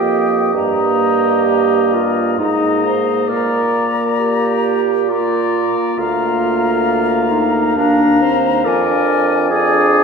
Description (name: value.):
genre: classical, slow romantic movement for wind quintet.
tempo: 67 BPM.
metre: 3/4.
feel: uneven beats, rubato.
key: unclear.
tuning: A4 = 440 Hz.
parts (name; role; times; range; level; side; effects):
bright silver concert flute; melody; 0.0-10.0 s; G5 to Bb5; -22 LUFS; left 6 dB; none.
warm oboe; second line; 0.0-10.0 s; D5 to F5; -21 LUFS; left 4 dB; none.
mellow clarinet; accompaniment; 0.0-10.0 s; D4 to C5; -17 LUFS; right 5 dB; none.
warm French horn; accompaniment; 0.0-10.0 s; Bb3 to D4; -22 LUFS; left 3 dB; none.
dark bassoon; bass; 0.0-10.0 s; D2 to Bb2; -20 LUFS; equal; none.
room: wet concert hall reverb, RT60 2.1 s.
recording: heard from further back in the room.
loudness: -13 LUFS.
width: side -5 dB against mid.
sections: 0.0-10.0 A section.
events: none.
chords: 0.0 Eb; 0.5 Eb/G; 3.3 Bb; 6.0 Bb/D; 8.7 Ddim/F.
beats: | 0.55 1.48 2.40 | 3.30 4.20 5.10 | 5.98 6.88 7.77 | 8.65 9.51.